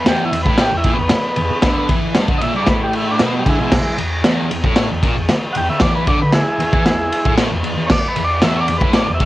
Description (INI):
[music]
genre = garage rock duo or trio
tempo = 115 BPM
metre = 4/4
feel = straight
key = E mixolydian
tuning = A4 = 440 Hz
[part]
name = overdriven combo organ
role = melody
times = 0.0-9.3 s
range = E3 to G5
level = -20 LUFS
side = right 1 dB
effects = cassette tape
[part]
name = fuzz guitar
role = riff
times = 0.1-9.3 s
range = E2 to E3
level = -20 LUFS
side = equal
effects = distortion, cassette tape
[part]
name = raw garage drum kit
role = drums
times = 0.1-9.3 s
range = crash cymbal, kick drum, ride cymbal, snare drum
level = -16 LUFS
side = equal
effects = none
[sound]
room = light reverb, small room ambience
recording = home recording on cassette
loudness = -14 LUFS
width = side -16 dB against mid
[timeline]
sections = 0.0-9.3 A section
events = transistor combo organ solo 0.0-9.3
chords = 0.0 E